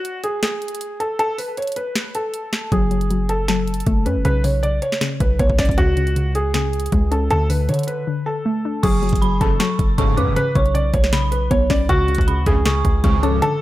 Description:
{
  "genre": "hip hop, trap",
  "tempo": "157 BPM",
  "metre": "4/4",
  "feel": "half-time",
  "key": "F# minor",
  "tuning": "A4 = 440 Hz",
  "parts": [
    { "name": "felt-muted upright piano", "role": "melody", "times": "0.0-13.6 s", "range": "F#4 to D5", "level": "-23 LUFS", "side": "equal", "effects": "none" },
    { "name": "trap drum kit", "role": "drums", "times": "0.0-13.5 s", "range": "crash cymbal, hi-hat, kick drum, snare drum", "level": "-21 LUFS", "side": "equal", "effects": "none" },
    { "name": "soft round pluck", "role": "accompaniment", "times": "2.7-13.6 s", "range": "C#3 to A4", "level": "-23 LUFS", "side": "left 2 dB", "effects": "chorus" },
    { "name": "distorted 808-style bass", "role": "bass", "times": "2.7-13.4 s", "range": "F#1 to D3", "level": "-20 LUFS", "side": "equal", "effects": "distortion" },
    { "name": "dark detuned synth bell", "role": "second line", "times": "8.8-13.4 s", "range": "B5 to D6", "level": "-27 LUFS", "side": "right 2 dB", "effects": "chorus, digital delay" },
    { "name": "big bright polysynth", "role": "stabs", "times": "9.4-13.4 s", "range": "G#1 to C#3", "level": "-24 LUFS", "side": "right 1 dB", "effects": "chorus, phaser" }
  ],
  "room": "little or no reverb",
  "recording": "none",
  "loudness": "-16 LUFS",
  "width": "side -15 dB against mid",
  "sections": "0.0-8.8 A section; 8.8-13.6 B section",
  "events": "break 0.0-2.7, 8.1-8.8",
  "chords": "0.0 N.C.; 2.7 F#madd9; 4.2 Bsus2; 5.8 C#5; 7.3 D5; 8.8 F#madd9; 10.4 Bsus2; 11.9 C#",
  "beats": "0.04 0.43 0.81 | 1.19 1.57 1.96 2.34 | 2.72 3.10 3.48 3.87 | 4.25 4.63 5.01 5.39 | 5.78 6.16 6.54 6.92 | 7.31 7.69 8.07 8.45 | 8.83 9.22 9.60 9.98 | 10.36 10.74 11.13 11.51 | 11.89 12.27 12.66 13.04 | 13.42"
}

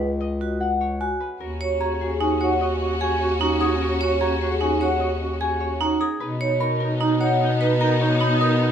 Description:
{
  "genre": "classical, minimalist pattern music",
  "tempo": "150 BPM",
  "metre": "6/4",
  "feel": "straight",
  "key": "unclear",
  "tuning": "A4 = 441 Hz",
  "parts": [
    { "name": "concert harp", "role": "melody", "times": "0.0-8.7 s", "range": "G#4 to A#5", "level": "-30 LUFS", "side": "left 6 dB", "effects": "none" },
    { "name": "small celesta", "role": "arpeggios", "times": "0.0-8.7 s", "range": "F#5 to D#6", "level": "-28 LUFS", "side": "left 2 dB", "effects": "none" },
    { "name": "vibraphone with hard mallets", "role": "arpeggios", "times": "0.0-8.7 s", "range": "D#4 to C#5", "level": "-26 LUFS", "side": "right 6 dB", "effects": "none" },
    { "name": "mellow bass clarinet", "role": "bass", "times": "0.0-8.7 s", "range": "C#2 to B2", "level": "-24 LUFS", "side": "left 2 dB", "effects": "none" },
    { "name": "mellow clarinet", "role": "second line", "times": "1.4-8.7 s", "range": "D#4 to F#4", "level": "-28 LUFS", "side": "right 4 dB", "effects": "none" },
    { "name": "clear symphonic string section", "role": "sustained chords", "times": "1.4-8.7 s", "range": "B3 to F#4", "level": "-28 LUFS", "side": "left 1 dB", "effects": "none" }
  ],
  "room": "moderate large studio reverb, RT60 0.8 s",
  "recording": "none",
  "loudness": "-20 LUFS",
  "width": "side -8 dB against mid",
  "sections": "0.0-1.4 A section; 1.4-8.7 B section",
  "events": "none",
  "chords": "0.0 C#sus2; 1.4 D#m7; 6.2 Bmaj7",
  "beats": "0.21 0.61 1.01 | 1.41 1.81 2.21 2.61 3.01 3.41 | 3.81 4.21 4.61 5.01 5.41 5.81 | 6.21 6.61 7.01 7.41 7.81 8.21 | 8.61"
}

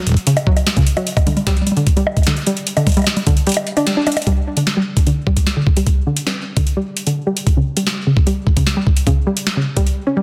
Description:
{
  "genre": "IDM",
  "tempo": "150 BPM",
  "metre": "4/4",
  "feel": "straight",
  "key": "unclear",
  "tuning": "A4 = 442 Hz",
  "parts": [
    { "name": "booming analog drum machine", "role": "drums", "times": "0.1-9.9 s", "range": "bongos, congas, hi-hat, snare drum", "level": "-22 LUFS", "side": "equal", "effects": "digital delay" },
    { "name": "electronic kick drum", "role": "drums", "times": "0.1-9.8 s", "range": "none", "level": "-17 LUFS", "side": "equal", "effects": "none" },
    { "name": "soft round pluck", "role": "arpeggios", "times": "0.3-10.2 s", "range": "C#3 to D4", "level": "-21 LUFS", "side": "equal", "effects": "chorus, delay" }
  ],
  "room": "light reverb",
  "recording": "dense, heavily limited modern master",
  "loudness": "-16 LUFS",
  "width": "mono",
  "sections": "0.0-4.3 A section; 4.3-10.2 B section",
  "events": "kick drops out 3.5-4.3; band accent 3.9; drum fill 4.1",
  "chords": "none",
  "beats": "0.27 0.67 | 1.07 1.47 1.87 2.27 | 2.67 3.07 3.47 3.87 | 4.27 4.67 5.07 5.47 | 5.87 6.27 6.67 7.07 | 7.47 7.87 8.27 8.67 | 9.07 9.47 9.87"
}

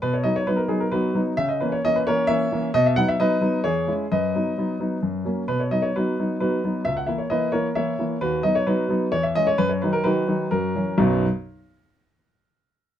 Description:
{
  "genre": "classical-period piano sonatina",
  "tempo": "132 BPM",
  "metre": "3/4",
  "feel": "rubato",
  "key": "B major",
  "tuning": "A4 = 444 Hz",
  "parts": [
    { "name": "warm grand piano", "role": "solo", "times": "0.0-11.3 s", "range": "B1 to F#5", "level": "-20 LUFS", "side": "equal", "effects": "none" }
  ],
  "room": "light reverb",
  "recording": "none",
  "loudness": "-20 LUFS",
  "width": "side -10 dB against mid",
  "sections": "0.0-11.0 A section; 11.0-12.4 B section",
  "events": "none",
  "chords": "0.0 B; 1.4 A#dim/C#; 2.7 B; 3.6 C#m/E; 4.1 B/F#; 5.0 F#; 5.5 B; 6.9 A#dim/C#; 8.2 B/D#; 9.1 C#m/E; 9.6 B/F#; 10.5 F#7; 11.0 B",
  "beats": "| 0.02 0.47 0.93 | 1.39 1.84 2.29 | 2.74 3.19 3.64 | 4.10 4.57 5.03 | 5.49 5.95 6.41 | 6.86 7.30 7.75 | 8.20 8.66 9.11 | 9.57 10.04 10.51 | 10.99"
}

